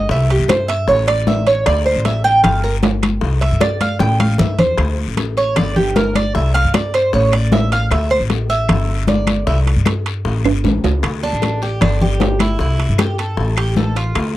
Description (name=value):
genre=latin, Cuban son and guajira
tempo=154 BPM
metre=4/4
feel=straight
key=D minor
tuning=A4 = 440 Hz
part: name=Cuban tres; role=arpeggios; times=0.0-14.3 s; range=D4 to G5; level=-18 LUFS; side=right 2 dB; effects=none
part: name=upright bass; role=bass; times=0.0-14.4 s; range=G1 to G2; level=-18 LUFS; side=equal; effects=none
part: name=bongos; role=percussion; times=0.1-14.4 s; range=none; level=-26 LUFS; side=left 7 dB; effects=none
part: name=congas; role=percussion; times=0.1-14.4 s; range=none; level=-19 LUFS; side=left 2 dB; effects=none
part: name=guiro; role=percussion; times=0.1-14.4 s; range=none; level=-32 LUFS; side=left 14 dB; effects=none
part: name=timbales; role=percussion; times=0.3-14.3 s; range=none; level=-22 LUFS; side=right 7 dB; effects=none
part: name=claves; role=percussion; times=0.5-14.3 s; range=none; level=-27 LUFS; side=left 10 dB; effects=none
room=little or no reverb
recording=dry, close 1970s-style studio recording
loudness=-13 LUFS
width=side -15 dB against mid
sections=0.0-11.0 A section; 11.0-14.4 B section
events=Cuban tres solo 0.0-11.0; drum fill 3.8-4.8, 10.4-11.0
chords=0.1 C5; 0.9 Aadd11; 1.7 D5; 2.4 Gm7; 3.2 C5; 4.0 A5; 4.8 D5; 5.6 Gm; 6.3 C5; 7.1 Aadd11; 7.9 D5; 8.7 G5; 9.5 C5; 10.3 A7; 11.0 D5; 11.8 G5; 12.6 C; 13.4 Fadd9/A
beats=| 0.10 0.49 0.88 1.27 | 1.66 2.05 2.44 2.83 | 3.22 3.61 4.00 4.39 | 4.79 5.18 5.57 5.96 | 6.35 6.74 7.13 7.52 | 7.91 8.30 8.69 9.08 | 9.47 9.86 10.25 10.64 | 11.03 11.42 11.81 12.20 | 12.59 12.98 13.37 13.76 | 14.15